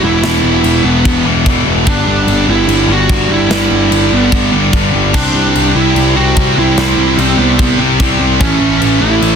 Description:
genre	heavy metal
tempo	147 BPM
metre	4/4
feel	straight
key	unclear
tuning	A4 = 440 Hz
part	high-gain lead guitar	melody	0.0-9.4 s	B3 to F#4	-15 LUFS	right 5 dB	distortion, ping-pong delay
part	heavy high-gain guitar	riff	0.0-9.4 s	E2 to C4	-16 LUFS	left 15 dB	distortion
part	heavy high-gain guitar	riff	0.0-9.4 s	E2 to C4	-17 LUFS	right 14 dB	distortion
part	fuzz picked electric bass	bass	0.0-9.4 s	E1 to C2	-15 LUFS	equal	overdrive
part	tight metal drum kit	drums	0.2-9.3 s	china cymbal, crash cymbal, kick drum, snare drum	-17 LUFS	equal	none
part	heavy high-gain guitar	riff	5.1-9.4 s	A2 to C4	-19 LUFS	equal	distortion
room	studio reverb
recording	dense, heavily limited modern master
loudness	-9 LUFS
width	side -7 dB against mid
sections	0.0-9.4 A section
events	half time 0.0-9.4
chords	0.0 E5; 1.9 G5; 5.1 C; 8.4 A

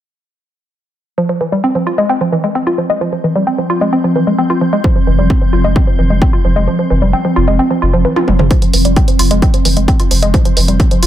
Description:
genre	driving peak-time techno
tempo	131 BPM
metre	4/4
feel	straight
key	F minor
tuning	A4 = 440 Hz
part	woody wave-folded pluck	riff	1.2-11.1 s	E3 to F4	-14 LUFS	equal	chorus, tube saturation, sidechain pumping, tape echo
part	swarming drone	drone	2.5-11.1 s	F3 to C4	-19 LUFS	equal	built-in reverb, sidechain pumping
part	electronic kick drum	drums	4.8-10.9 s	none	-12 LUFS	equal	none
part	saturated sub bass	bass	5.1-11.1 s	F1	-13 LUFS	equal	overdrive, sidechain pumping, low-pass filter
part	punchy analog drum machine	drums	8.2-11.1 s	hi-hat, toms	-17 LUFS	equal	sidechain pumping on toms, sidechain pumping on hats
room	light reverb, digital ambience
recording	none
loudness	-10 LUFS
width	side -12 dB against mid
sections	1.2-8.5 A section; 8.5-11.1 B section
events	kick drops out 6.7-8.5; drum fill 8.2-8.5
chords	1.2 F5

